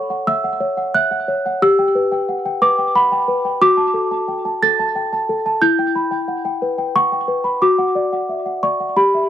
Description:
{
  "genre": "classical, lullaby for celesta",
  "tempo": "90 BPM",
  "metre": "3/4",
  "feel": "straight",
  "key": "D major",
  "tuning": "A4 = 440 Hz",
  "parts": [
    { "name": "small celesta", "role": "solo", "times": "0.0-9.3 s", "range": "E4 to A6", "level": "-15 LUFS", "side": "equal", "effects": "tape echo" }
  ],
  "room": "little or no reverb",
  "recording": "dry, close 1970s-style studio recording",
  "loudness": "-15 LUFS",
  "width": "side -10 dB against mid",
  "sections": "0.0-9.3 A section",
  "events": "none",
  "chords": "0.0 F#m/A; 1.6 G; 3.6 D/F#; 5.6 Em; 7.6 D/F#"
}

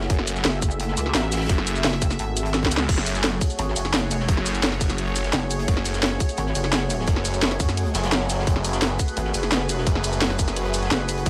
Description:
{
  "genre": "dark technical drum and bass",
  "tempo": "172 BPM",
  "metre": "4/4",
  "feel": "straight",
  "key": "F# minor",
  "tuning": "A4 = 440 Hz",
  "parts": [
    { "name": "sweeping resonant pad", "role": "sustained chords", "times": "0.0-11.3 s", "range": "A3 to E5", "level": "-32 LUFS", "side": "equal", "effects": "chorus, sidechain pumping" },
    { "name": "pulsing pluck wobble bass", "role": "bass", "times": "0.0-11.2 s", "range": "F#1 to F#2", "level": "-28 LUFS", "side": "equal", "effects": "chorus" },
    { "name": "crunchy breakbeat drum kit", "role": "drums", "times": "0.0-11.3 s", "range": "hi-hat, snare drum", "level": "-37 LUFS", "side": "equal", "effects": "none" },
    { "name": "phased detuned saw bass", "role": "bass", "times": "0.1-11.3 s", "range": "F#1 to C#2", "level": "-28 LUFS", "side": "equal", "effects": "phaser" },
    { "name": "drum and bass drum kit", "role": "drums", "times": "0.1-11.3 s", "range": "crash cymbal, hi-hat, ride cymbal, shaker, snare drum", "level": "-27 LUFS", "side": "equal", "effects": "none" },
    { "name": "electronic kick drum", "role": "drums", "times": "0.1-11.3 s", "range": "none", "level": "-25 LUFS", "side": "equal", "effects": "none" }
  ],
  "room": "light reverb, digital ambience",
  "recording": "lossy compression artefacts",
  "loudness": "-23 LUFS",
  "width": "mono",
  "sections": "0.0-2.9 A section; 2.9-11.3 A section",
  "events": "drop 0.0-2.9, 2.9-11.3; drum fill 2.5-2.9",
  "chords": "0.0 F#madd9"
}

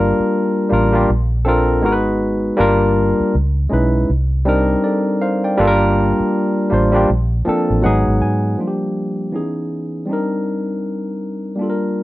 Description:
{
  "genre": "R&B, neo-soul",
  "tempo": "80 BPM",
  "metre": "4/4",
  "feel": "swing 60% on 16ths",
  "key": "G minor",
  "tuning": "A4 = 440 Hz",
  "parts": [
    { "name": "barky tine electric piano", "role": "accompaniment", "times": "0.0-12.0 s", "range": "E3 to Ab5", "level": "-16 LUFS", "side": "equal", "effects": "overdrive" },
    { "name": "vintage muted fingered electric bass", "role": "bass", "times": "0.0-8.5 s", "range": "G1 to Ab2", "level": "-18 LUFS", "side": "equal", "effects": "none" }
  ],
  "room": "moderate studio reverb, RT60 0.5 s",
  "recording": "dark, warm production, nothing above 7.8 kHz",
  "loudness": "-15 LUFS",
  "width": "side -17 dB against mid",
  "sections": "0.0-8.6 A section; 8.6-12.0 B section",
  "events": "tine electric piano fill 7.5-8.6",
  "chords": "0.0 Gm7; 1.1 Bbmaj9; 1.8 Abm7; 2.6 Gm7; 3.3 C#m9; 4.1 Cm9; 5.6 Gm7; 7.1 Bbmaj9; 7.8 Abm7; 8.6 Gm7; 9.3 C#m9; 10.1 Cm9"
}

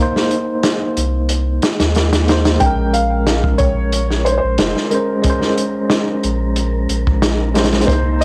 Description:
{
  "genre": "trip hop",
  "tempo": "91 BPM",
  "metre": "4/4",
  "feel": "straight",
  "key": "unclear",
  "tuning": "A4 = 440 Hz",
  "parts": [
    { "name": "bell-like tine electric piano", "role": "accompaniment", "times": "0.0-8.2 s", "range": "Ab3 to C5", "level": "-22 LUFS", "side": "equal", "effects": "tremolo, low-pass filter, cassette tape" },
    { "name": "crunchy breakbeat drum kit", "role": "drums", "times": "0.2-8.2 s", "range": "hi-hat, kick drum, snare drum", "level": "-19 LUFS", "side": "equal", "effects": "none" },
    { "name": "warm sub bass", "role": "bass", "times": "1.0-8.2 s", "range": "F1 to Eb2", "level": "-20 LUFS", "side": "equal", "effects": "none" },
    { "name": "felt-muted upright piano", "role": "melody", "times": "2.6-8.2 s", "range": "Bb4 to G5", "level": "-22 LUFS", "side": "equal", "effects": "cassette tape, dub echo" },
    { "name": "wind-like tuned noise texture", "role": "texture", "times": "4.0-8.2 s", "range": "Bb4", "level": "-36 LUFS", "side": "equal", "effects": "none" }
  ],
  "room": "light reverb",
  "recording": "home recording on cassette",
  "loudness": "-16 LUFS",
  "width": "mono",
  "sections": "0.0-8.2 A section",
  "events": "none",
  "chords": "0.0 Cm7; 2.6 Bbm9"
}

